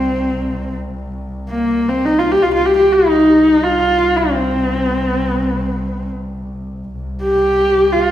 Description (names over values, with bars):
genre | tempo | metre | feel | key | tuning
mongolian traditional, Mongolian folk | free time | none | none | C yu mode | A4 = 440 Hz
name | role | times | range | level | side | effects
rich horsehead fiddle | melody | 0.0-8.1 s | Bb3 to G4 | -13 LUFS | equal | none
rich double bass | drone | 0.0-8.1 s | C2 | -24 LUFS | equal | none
room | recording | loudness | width
wet recital hall reverb, RT60 1.8 s | recorded in a church or concert hall | -13 LUFS | side -12 dB against mid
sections
0.0-8.1 A section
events
none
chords
none